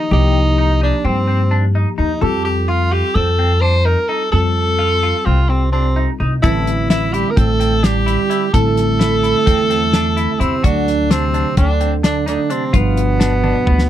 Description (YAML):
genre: progressive instrumental, band music in an uneven meter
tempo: 257 BPM (eighths)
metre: 9/8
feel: straight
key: unclear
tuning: A4 = 441 Hz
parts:
  - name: clear tenor saxophone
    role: melody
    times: 0.0-13.9 s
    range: B3 to C5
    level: -18 LUFS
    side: equal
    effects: none
  - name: mellow tine electric piano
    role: accompaniment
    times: 0.0-13.9 s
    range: D3 to A4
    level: -23 LUFS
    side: left 1 dB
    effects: medium stereo tremolo
  - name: semi-hollow electric guitar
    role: arpeggios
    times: 0.1-13.8 s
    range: B3 to A4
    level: -25 LUFS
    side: left 1 dB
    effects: phaser
  - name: upright bass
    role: bass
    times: 0.1-13.9 s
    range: G1 to G2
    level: -17 LUFS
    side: equal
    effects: none
  - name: trombone with bucket mute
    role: second line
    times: 5.5-13.9 s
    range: B2 to Bb3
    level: -22 LUFS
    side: right 10 dB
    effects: none
  - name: damped 70s drum kit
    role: drums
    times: 6.4-13.9 s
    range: hi-hat, kick drum, snare drum, toms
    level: -17 LUFS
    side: equal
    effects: none
room: little or no reverb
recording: dry, close 1970s-style studio recording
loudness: -13 LUFS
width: side -12 dB against mid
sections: 0.0-13.9 A section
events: drum fill 13.4-13.9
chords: 0.0 Cm; 2.2 Fadd9; 6.4 Am; 10.6 D; 12.7 G7